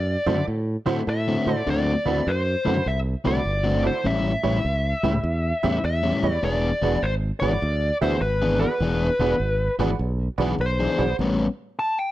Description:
electric blues shuffle; 101 BPM; 4/4; swing 66% on 8ths; A4 = 440 Hz
dark smooth lead guitar; melody; 0.0-12.1 s; B4 to A5; -25 LUFS; left 1 dB; overdrive
modern bright fingered electric bass; bass; 0.0-11.5 s; E1 to A2; -25 LUFS; right 1 dB
honky-tonk upright piano; accompaniment; 0.3-11.1 s; E4 to E5; -30 LUFS; right 8 dB
crunchy overdriven guitar; riff; 0.3-11.5 s; A2 to G#4; -25 LUFS; left 3 dB
light reverb; -21 LUFS; side -15 dB against mid
0.0-12.1 A section
0.0 D7; 4.0 A7; 6.4 E7; 11.2 A9

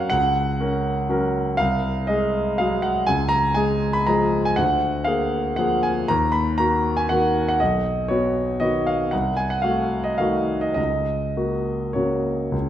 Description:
classical, piano waltz; 99-128 BPM; 3/4; rubato; F# major; A4 = 442 Hz
clear concert grand piano; solo; 0.0-12.7 s; B1 to B5; -19 LUFS; equal
wet recital hall reverb, RT60 1.4 s; -19 LUFS; side -11 dB against mid
0.0-12.7 A section
0.0 F#; 1.6 G#7/B#; 3.1 C#; 4.6 A#7/D; 6.1 D#m; 7.6 B; 9.1 Cdim7; 10.8 F#/C#

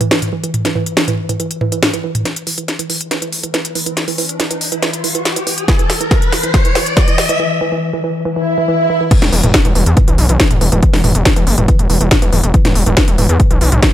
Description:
driving peak-time techno; 140 BPM; 4/4; straight; A4 = 441 Hz
woody wave-folded pluck; riff; 0.0-13.9 s; E3; -20 LUFS; right 1 dB; chorus, tube saturation, sidechain pumping, ping-pong delay
techno drum kit; drums; 0.0-13.9 s; crash cymbal, hi-hat, snare drum, toms; -16 LUFS; equal; overdrive, high-pass filter on hats, high-pass filter on toms, high-pass filter on snare, high-pass filter on cymbals
riser, swell and impact; sound effects; 4.1-10.8 s; -20 LUFS; equal
electronic kick drum; drums; 5.7-13.9 s; -12 LUFS; equal; overdrive
gritty driven synth bass; bass; 9.2-13.8 s; E1 to E2; -14 LUFS; equal; sidechain pumping
light reverb; -12 LUFS; side -12 dB against mid
0.0-2.3 A section; 2.3-9.1 B section; 9.1-13.9 C section
build-up 2.3-9.1; drum fill 2.3-7.4; filter sweep on synth arpeggio sound 2.3-9.1; riser 4.1-7.4; break 7.4-9.1; swell 8.4-9.1; drop 9.1-13.9; impact 9.1-10.8
0.0 E5; 2.3 N.C.; 9.1 E5

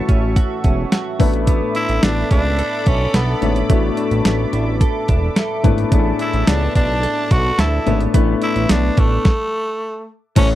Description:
1980s-style pop; 108 BPM; 4/4; straight; A4 = 442 Hz
warm concert grand piano; accompaniment; 0.0-10.6 s; A2 to E5; -22 LUFS; left 6 dB
sweeping resonant pad; sustained chords; 0.0-10.6 s; F#4 to E6; -28 LUFS; left 1 dB; chorus
direct-recorded clean electric guitar; riff; 0.0-10.6 s; E3 to A4; -26 LUFS; right 5 dB; analog chorus, slapback echo
fat analog bass; bass; 0.1-10.6 s; E1 to D2; -19 LUFS; right 1 dB
clean 12-bit digital drum machine; drums; 0.1-10.5 s; crash cymbal, hi-hat, kick drum, snare drum; -16 LUFS; right 1 dB
raspy tenor saxophone; melody; 1.8-10.5 s; A3 to F#4; -21 LUFS; equal; slapback echo
little or no reverb; dry, close 1970s-style studio recording; -15 LUFS; side -14 dB against mid
0.0-10.4 A section
grand piano fill 5.1-5.9; stop 9.3-10.4
0.0 F#m7/A; 1.2 E7sus4

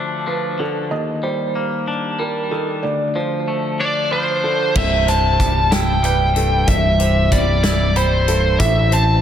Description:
post-rock; 62 BPM (dotted quarters); 6/8; straight; C major; A4 = 440 Hz
twangy electric guitar; arpeggios; 0.0-9.2 s; C2 to E4; -23 LUFS; left 2 dB; tape echo
felt-muted upright piano; arpeggios; 0.3-9.2 s; A4 to B5; -24 LUFS; right 4 dB; tape echo
bluesy overdriven lead guitar; melody; 3.8-9.2 s; C5 to A5; -18 LUFS; equal; distortion, tape echo
growling picked electric bass; bass; 4.8-9.2 s; C1 to A1; -18 LUFS; equal; overdrive
big rock drum kit; drums; 4.8-9.1 s; crash cymbal, hi-hat, kick drum, snare drum; -22 LUFS; equal
moderate plate reverb, RT60 3.0 s; dreamy mix soaked in reverb; -15 LUFS; side -9 dB against mid
0.0-4.8 A section; 4.8-9.2 B section
0.0 Dm; 0.9 Ebmaj7; 2.8 Dm7; 4.8 C; 8.6 Am

